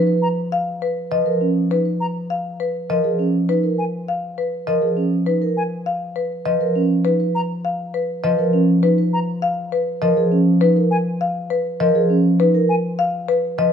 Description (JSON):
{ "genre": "classical, minimalist pattern music", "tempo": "101 BPM", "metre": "3/4", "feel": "straight", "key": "G# dorian", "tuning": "A4 = 440 Hz", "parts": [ { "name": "marimba with medium mallets", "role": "melody", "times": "0.0-13.7 s", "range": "B4 to E#5", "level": "-22 LUFS", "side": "left 4 dB", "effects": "none" }, { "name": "concert harp", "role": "accompaniment", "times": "0.0-13.7 s", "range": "E#3", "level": "-21 LUFS", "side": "left 2 dB", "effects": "none" }, { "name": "vibraphone with soft mallets", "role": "arpeggios", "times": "0.0-13.7 s", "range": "C#4 to B4", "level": "-20 LUFS", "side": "right 7 dB", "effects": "none" }, { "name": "silver concert flute", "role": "arpeggios", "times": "0.2-12.8 s", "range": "G#5 to A#5", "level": "-26 LUFS", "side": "left 2 dB", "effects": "none" } ], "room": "light reverb", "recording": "none", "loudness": "-17 LUFS", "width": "side -8 dB against mid", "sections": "0.0-13.7 A section", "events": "none", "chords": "0.0 C#7 (rootless); 2.9 G#madd9; 6.5 C#13 (rootless); 10.0 G#madd9", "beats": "0.52 | 1.11 1.70 2.30 | 2.89 3.49 4.08 | 4.67 5.27 5.86 | 6.46 7.05 7.64 | 8.24 8.83 9.43 | 10.02 10.61 11.21 | 11.80 12.40 12.99 | 13.59" }